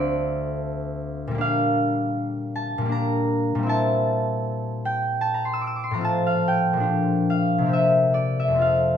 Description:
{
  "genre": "classical, solo harp piece",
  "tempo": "65-81 BPM",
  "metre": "3/4",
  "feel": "rubato",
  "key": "unclear",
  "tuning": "A4 = 438 Hz",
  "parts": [
    { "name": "concert harp", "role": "solo", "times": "0.0-9.0 s", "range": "D2 to E6", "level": "-21 LUFS", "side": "left 1 dB", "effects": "none" }
  ],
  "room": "moderate stone room reverb, RT60 1.3 s",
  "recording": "none",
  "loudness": "-21 LUFS",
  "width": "side -8 dB against mid",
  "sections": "0.0-9.0 A section",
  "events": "none",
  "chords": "0.0 Dm7; 1.4 Gm7/Bb; 3.7 C7/Bb; 6.1 F/A; 6.9 Gm7/Bb; 7.7 C7",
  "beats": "0.65 | 1.40 2.16 2.93 | 3.69 4.46 5.25 | 6.06 6.88 7.72 | 8.59"
}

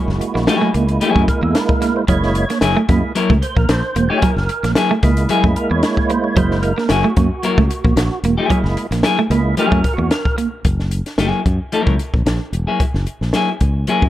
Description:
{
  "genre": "funk",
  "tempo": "112 BPM",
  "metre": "4/4",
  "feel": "straight",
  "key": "F# mixolydian",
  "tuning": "A4 = 439 Hz",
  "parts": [
    { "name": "clean electric guitar", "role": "riff", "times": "0.0-10.5 s", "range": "F#3 to A#3", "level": "-21 LUFS", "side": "right 4 dB", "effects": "tremolo" },
    { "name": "percussive tonewheel organ", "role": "stabs", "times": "0.0-10.4 s", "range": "G#3 to C#5", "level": "-21 LUFS", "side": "right 3 dB", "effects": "overdrive, chorus vibrato, slow rotary speaker" },
    { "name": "fingered electric bass", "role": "bass", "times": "0.1-14.1 s", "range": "E1 to F#2", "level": "-18 LUFS", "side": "equal", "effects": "none" },
    { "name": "compact cocktail drum kit", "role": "drums", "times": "0.1-14.1 s", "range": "hi-hat, kick drum, snare drum", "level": "-19 LUFS", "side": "equal", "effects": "none" },
    { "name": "clean electric guitar", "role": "accompaniment", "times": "0.5-14.0 s", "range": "F#3 to A#4", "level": "-19 LUFS", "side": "left 4 dB", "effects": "none" }
  ],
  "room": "light reverb",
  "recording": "dark, warm production",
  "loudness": "-14 LUFS",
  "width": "side -13 dB against mid",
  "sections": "0.0-10.7 A section; 10.7-14.1 B section",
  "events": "tonewheel organ solo 0.0-10.7",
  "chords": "0.0 F#9",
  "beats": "0.48 1.02 1.55 | 2.09 2.62 3.16 3.69 | 4.23 4.76 5.30 5.83 | 6.37 6.90 7.43 7.97 | 8.51 9.04 9.58 10.11 | 10.65 11.19 11.73 12.27 | 12.80 13.34 13.88"
}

